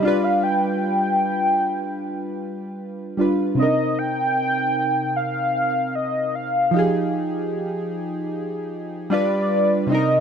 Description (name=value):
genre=R&B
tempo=76 BPM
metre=4/4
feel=straight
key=C minor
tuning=A4 = 440 Hz
part: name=warm velvety synth lead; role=melody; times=0.0-10.2 s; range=D5 to G5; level=-21 LUFS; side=left 1 dB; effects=chorus
part: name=warm analog keys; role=accompaniment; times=0.0-10.2 s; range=C3 to B4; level=-22 LUFS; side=right 1 dB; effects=chorus
room=light reverb, digital ambience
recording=none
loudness=-19 LUFS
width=side -7 dB against mid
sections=0.0-10.2 A section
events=none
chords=0.0 G7; 3.6 Cm7; 6.7 Fm9; 9.1 G7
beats=| 0.43 1.22 2.00 2.79 | 3.58 4.37 5.16 5.95 | 6.74 7.53 8.32 9.11 | 9.90